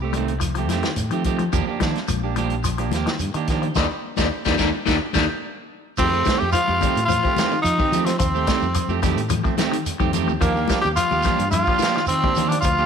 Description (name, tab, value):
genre	afrobeat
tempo	108 BPM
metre	4/4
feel	straight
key	F mixolydian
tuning	A4 = 440 Hz
part	electric guitar at the edge of break-up	arpeggios	0.0-12.8 s	D3 to G3	-27 LUFS	left 11 dB	phaser
part	electric guitar at the edge of break-up	stabs	0.0-12.9 s	Eb3 to G4	-26 LUFS	right 11 dB	none
part	fingered electric bass	bass	0.0-12.9 s	Bb1 to F3	-25 LUFS	equal	none
part	vintage drum kit	drums	0.1-12.8 s	crash cymbal, hi-hat, kick drum, snare drum	-26 LUFS	left 1 dB	none
part	congas	percussion	0.1-12.5 s	none	-31 LUFS	left 11 dB	none
part	shekere	percussion	0.1-12.9 s	none	-31 LUFS	right 3 dB	none
part	raspy tenor saxophone	melody	6.0-12.9 s	Bb3 to G4	-21 LUFS	left 1 dB	none
part	bright alto saxophone	second line	6.0-12.9 s	Bb3 to G4	-30 LUFS	right 11 dB	none
room	moderate echo chamber reverb, RT60 1.7 s, small room ambience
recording	1960s-style stereo with parts hard left and right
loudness	-18 LUFS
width	side -7 dB against mid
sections	0.0-6.0 A section; 6.0-12.9 B section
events	band accent 3.8-6.0; drum fill 4.9-6.0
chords	0.0 F9; 1.5 Ebmaj9; 6.0 F9; 10.4 Ebmaj9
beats	0.42 0.98 | 1.54 2.09 2.65 3.21 | 3.76 4.32 4.88 5.43 | 5.99 6.54 7.10 7.65 | 8.21 8.76 9.32 9.87 | 10.43 10.98 11.54 12.10 | 12.65